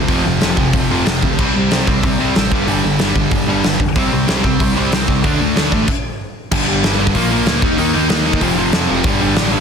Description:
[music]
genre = punk rock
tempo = 188 BPM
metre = 4/4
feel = straight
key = unclear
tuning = A4 = 440 Hz
[part]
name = high-gain distorted guitar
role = riff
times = 0.0-9.6 s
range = F2 to Eb4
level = -19 LUFS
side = right 1 dB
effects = distortion
[part]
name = overdriven electric guitar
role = riff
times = 0.0-9.6 s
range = F2 to Eb4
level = -20 LUFS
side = left 11 dB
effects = none
[part]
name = overdriven electric guitar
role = riff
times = 0.0-9.6 s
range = F2 to Eb4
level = -20 LUFS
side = right 12 dB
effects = none
[part]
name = growling picked electric bass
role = bass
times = 0.0-9.6 s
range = F1 to F2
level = -22 LUFS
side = equal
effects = overdrive
[part]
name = big rock drum kit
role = drums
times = 0.1-9.4 s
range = crash cymbal, hi-hat, kick drum, snare drum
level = -18 LUFS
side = equal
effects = none
[sound]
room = little or no reverb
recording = dense, heavily limited modern master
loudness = -13 LUFS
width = side -6 dB against mid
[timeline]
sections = 0.0-6.5 A section; 6.5-9.6 B section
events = stop 5.9-6.5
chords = 0.0 F5; 1.4 C5; 2.5 G5; 4.0 C5; 5.2 D5; 6.5 G5; 7.2 Bb; 7.6 Eb5; 8.4 F5; 9.1 G5

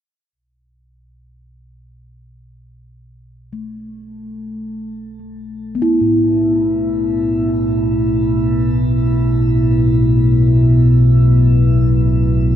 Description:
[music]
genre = dark ambient drone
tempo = free time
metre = none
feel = none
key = unclear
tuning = A4 = 438 Hz
[part]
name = deep rumbling drone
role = drone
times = 0.9-12.6 s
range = B1 to B2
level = -14 LUFS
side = equal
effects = built-in reverb
[part]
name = bronze singing bowl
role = arpeggios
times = 3.5-12.6 s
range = A2 to E4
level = -17 LUFS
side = equal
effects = tape echo, shimmer reverb
[sound]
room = moderate huge ambient reverb, RT60 7.9 s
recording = none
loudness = -12 LUFS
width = side -10 dB against mid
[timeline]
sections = 0.4-12.6 A section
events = fade-in on synth drone 0.4-12.6; fade-in on singing bowl 0.4-12.6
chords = 0.4 B7sus4

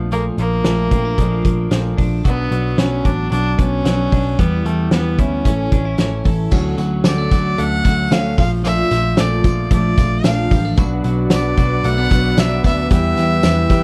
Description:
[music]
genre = jangly indie pop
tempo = 113 BPM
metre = 4/4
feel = straight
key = unclear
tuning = A4 = 440 Hz
[part]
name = picked steel-string acoustic guitar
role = accompaniment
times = 0.0-13.8 s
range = A2 to G4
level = -28 LUFS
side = equal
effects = none
[part]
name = twelve-string electric guitar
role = arpeggios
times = 0.0-13.8 s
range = F3 to A4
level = -25 LUFS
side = equal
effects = none
[part]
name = vintage muted picked electric bass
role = bass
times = 0.0-13.8 s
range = A1 to E2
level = -22 LUFS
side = equal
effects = none
[part]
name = rich violin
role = melody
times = 0.1-13.8 s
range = A3 to F#5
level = -24 LUFS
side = equal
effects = none
[part]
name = loose indie drum kit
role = drums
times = 0.1-13.8 s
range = crash cymbal, hi-hat, kick drum, snare drum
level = -19 LUFS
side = equal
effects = none
[part]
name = tambourine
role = percussion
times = 6.5-13.8 s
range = none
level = -39 LUFS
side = equal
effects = none
[part]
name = overdriven combo organ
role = accompaniment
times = 10.8-13.8 s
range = D4 to B4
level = -28 LUFS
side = equal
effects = none
[part]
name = hollow soft pad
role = sustained chords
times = 11.0-13.8 s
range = B4 to E6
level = -32 LUFS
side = equal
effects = ensemble chorus
[sound]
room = light reverb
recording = none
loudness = -17 LUFS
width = mono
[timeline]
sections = 0.0-6.5 A section; 6.5-13.8 B section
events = none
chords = 0.0 Bbmaj7; 2.3 Bm; 4.4 Em; 5.5 A; 6.5 Dmaj7; 8.4 Bbmaj7; 10.8 Bm; 12.9 Em

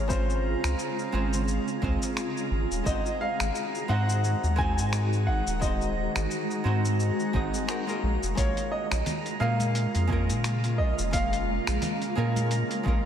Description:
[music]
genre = sunset chillout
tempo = 87 BPM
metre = 4/4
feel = swing 57% on 16ths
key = unclear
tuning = A4 = 440 Hz
[part]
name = warm grand piano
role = melody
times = 0.0-12.5 s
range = C5 to Ab5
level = -33 LUFS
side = equal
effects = vintage 12-bit sampler grit, analog delay
[part]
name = archtop guitar, miked and amplified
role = accompaniment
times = 0.0-13.1 s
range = Ab3 to Eb5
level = -33 LUFS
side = moving between left 3 dB and right 5 dB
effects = auto-pan, analog delay
[part]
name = shimmering ambient pad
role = sustained chords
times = 0.0-13.1 s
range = Db3 to Ab4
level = -32 LUFS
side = equal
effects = chorus, built-in reverb, phaser
[part]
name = round analog bass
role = bass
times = 0.0-13.0 s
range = Eb1 to Bb2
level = -27 LUFS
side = equal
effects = none
[part]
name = drifting glass-harmonics texture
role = texture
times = 0.0-13.1 s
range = Bb5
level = -40 LUFS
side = right 4 dB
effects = chorus, built-in reverb
[part]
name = dusty soul sampler-style drum kit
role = drums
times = 0.1-12.8 s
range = cabasa, finger snaps, hi-hat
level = -35 LUFS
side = left 1 dB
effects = overdrive
[part]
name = electronic kick drum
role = drums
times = 0.1-13.0 s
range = none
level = -30 LUFS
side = equal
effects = none
[part]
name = congas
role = percussion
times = 9.1-12.5 s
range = none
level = -37 LUFS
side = left 1 dB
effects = none
[sound]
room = moderate lush hall reverb, RT60 2.5 s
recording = dreamy mix soaked in reverb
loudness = -25 LUFS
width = side -9 dB against mid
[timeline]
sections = 0.0-13.1 A section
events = none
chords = 0.0 Dbmaj7; 2.5 Ab7; 8.0 Bbm7

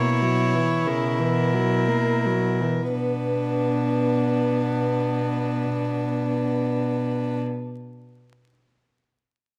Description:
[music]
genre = classical, slow romantic movement for string quartet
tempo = 27-33 BPM (dotted quarters)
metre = 6/8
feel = rubato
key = B minor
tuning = A4 = 440 Hz
[part]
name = rich violin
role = melody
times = 0.0-7.4 s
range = A#4 to C#5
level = -32 LUFS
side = equal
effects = none
[part]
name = warm violin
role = second line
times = 0.0-7.4 s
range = D4 to E4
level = -30 LUFS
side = equal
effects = none
[part]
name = warm viola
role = accompaniment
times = 0.0-7.4 s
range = C#3 to B3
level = -29 LUFS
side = equal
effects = none
[part]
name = warm cello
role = bass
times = 0.0-7.4 s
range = B2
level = -28 LUFS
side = equal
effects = none
[sound]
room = moderate recital hall reverb, RT60 1.3 s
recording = vinyl crackle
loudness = -24 LUFS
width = mono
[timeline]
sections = 0.0-2.9 A section; 2.9-6.6 B section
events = slowing down 0.0-2.9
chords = 0.0 F#7/B; 2.9 Bm

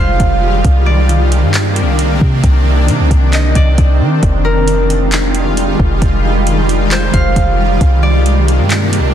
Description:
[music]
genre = hip hop, atmospheric cloud-rap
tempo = 134 BPM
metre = 4/4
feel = half-time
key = C minor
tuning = A4 = 440 Hz
[part]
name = concert harp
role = melody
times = 0.0-9.1 s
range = Bb4 to F5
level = -20 LUFS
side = equal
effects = digital delay
[part]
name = shimmering ambient pad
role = sustained chords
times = 0.0-9.1 s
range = C3 to F4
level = -15 LUFS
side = equal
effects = chorus, built-in reverb, sidechain pumping
[part]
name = soft 808-style bass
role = bass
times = 0.0-9.1 s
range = F1 to Eb3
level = -13 LUFS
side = equal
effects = none
[part]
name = smooth R&B drum kit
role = drums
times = 0.2-9.0 s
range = handclaps, hi-hat, kick drum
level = -15 LUFS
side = equal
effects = none
[sound]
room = digital ambience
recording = dense, heavily limited modern master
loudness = -10 LUFS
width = side -10 dB against mid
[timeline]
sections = 0.0-9.1 A section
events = none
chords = 0.0 Fm9; 0.6 Cm9; 4.2 Fm9; 7.8 Cm9

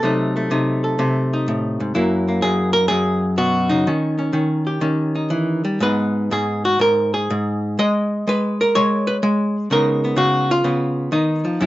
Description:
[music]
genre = solo jazz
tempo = 125 BPM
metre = 4/4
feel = swing 68% on 8ths, rubato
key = unclear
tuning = A4 = 441 Hz
[part]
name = archtop guitar, miked and amplified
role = solo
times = 0.0-11.7 s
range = F#2 to D#5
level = -17 LUFS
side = equal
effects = none
[sound]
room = light reverb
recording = nothing above 7.5 kHz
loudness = -17 LUFS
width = side -16 dB against mid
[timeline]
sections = 0.0-11.7 A section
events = none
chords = 0.0 Cdim7; 2.0 F#9; 3.9 D#7; 5.8 G#m; 9.7 C#13

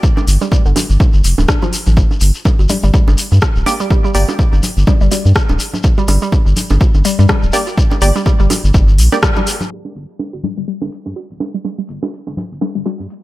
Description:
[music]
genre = minimal techno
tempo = 124 BPM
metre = 4/4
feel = swing 57% on 16ths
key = G minor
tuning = A4 = 440 Hz
[part]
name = electronic kick drum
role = drums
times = 0.0-9.3 s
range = none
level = -13 LUFS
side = equal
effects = studio reverb
[part]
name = shekere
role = percussion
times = 0.0-13.2 s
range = none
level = -26 LUFS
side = left 3 dB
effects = none
[part]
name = bongos, cowbell and congas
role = percussion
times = 0.2-13.0 s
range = none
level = -22 LUFS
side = right 2 dB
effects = overdrive, studio reverb
[part]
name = round analog bass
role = bass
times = 0.3-13.1 s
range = D1 to G2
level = -12 LUFS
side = equal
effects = tube saturation, sidechain pumping, high-pass filter
[part]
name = techno drum kit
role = drums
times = 0.3-9.8 s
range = crash cymbal, hi-hat, rim click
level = -20 LUFS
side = equal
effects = studio reverb
[part]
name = hollow square pluck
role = riff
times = 0.4-12.9 s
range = D3 to D4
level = -21 LUFS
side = left 1 dB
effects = chorus, phaser, sidechain pumping, dub echo
[part]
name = wavetable chord stab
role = stabs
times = 3.7-4.2, 7.5-9.2 s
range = Bb3 to D5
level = -21 LUFS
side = right 1 dB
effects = dub echo
[sound]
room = digital ambience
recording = low-pass filter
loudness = -11 LUFS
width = side -17 dB against mid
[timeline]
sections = 0.0-9.7 A section; 9.7-13.2 B section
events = drop 0.0-9.7; band accent 9.2; filter sweep on synth arpeggio sound 9.7-13.2; filter sweep 9.7-13.2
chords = 0.0 N.C.; 9.7 G5

